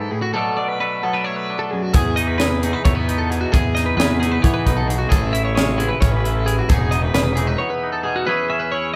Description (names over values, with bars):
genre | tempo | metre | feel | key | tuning
math rock and midwest emo | 265 BPM (eighths) | 7/8 | straight | E major | A4 = 440 Hz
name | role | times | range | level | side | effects
twangy electric guitar | accompaniment | 0.0-9.0 s | E2 to A4 | -26 LUFS | equal | none
twelve-string electric guitar | arpeggios | 0.0-9.0 s | F#4 to E5 | -26 LUFS | equal | none
fuzz picked electric bass | bass | 1.9-7.5 s | E1 to E3 | -23 LUFS | equal | overdrive
crisp fusion drum kit | drums | 1.9-7.5 s | hi-hat, kick drum, snare drum | -22 LUFS | equal | none
room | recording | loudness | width
moderate large studio reverb, RT60 1.2 s | band playing live in one room | -19 LUFS | mono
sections
0.0-8.3 A section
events
break 7.6-8.3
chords
0.3 Bm7; 1.9 Emaj7; 5.1 Amaj7; 6.7 Emaj7; 8.3 E6